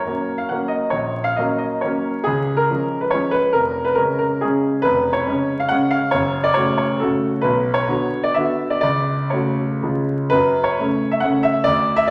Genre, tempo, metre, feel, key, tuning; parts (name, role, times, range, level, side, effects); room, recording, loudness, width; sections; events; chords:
classical, romantic triple-time dance for piano with dotted rhythms; 117-148 BPM; 3/4; rubato; F# minor from 4.8 s; A4 = 440 Hz
clear concert grand piano; solo; 0.0-12.1 s; E#1 to F#5; -19 LUFS; equal
wet recital hall reverb, RT60 1.4 s; vinyl crackle; -19 LUFS; mono
0.0-10.3 A section; 10.3-12.1 B section
0.0 F#; 0.9 F#/A#; 2.3 C#; 3.5 C#/E#; 6.1 F#m; 7.4 Bm; 8.8 F#m/C#; 9.8 C#; 10.3 F#m